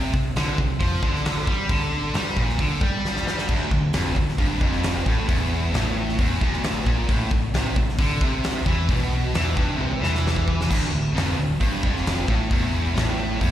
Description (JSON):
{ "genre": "hard rock", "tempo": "133 BPM", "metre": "4/4", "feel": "straight", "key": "D minor", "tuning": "A4 = 441 Hz", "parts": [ { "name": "high-gain distorted guitar", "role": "riff", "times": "0.0-13.5 s", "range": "D2 to G3", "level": "-25 LUFS", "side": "equal", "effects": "distortion, slapback echo" }, { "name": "hollow-body short-scale fingered electric bass", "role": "bass", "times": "0.0-13.5 s", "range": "D1 to G2", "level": "-26 LUFS", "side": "equal", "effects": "none" }, { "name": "huge arena drum kit", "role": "drums", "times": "0.1-13.5 s", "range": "crash cymbal, hi-hat, kick drum, snare drum, toms", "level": "-24 LUFS", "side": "equal", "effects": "none" } ], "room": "little or no reverb", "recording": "live gig heard through the venue's PA, recital hall reverb", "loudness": "-20 LUFS", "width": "side -12 dB against mid", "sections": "0.0-10.7 A section; 10.7-13.5 B section", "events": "drum fill 3.1-3.5, 9.8-10.7", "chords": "0.0 C5; 3.5 Dm; 7.1 A5; 10.7 Dm" }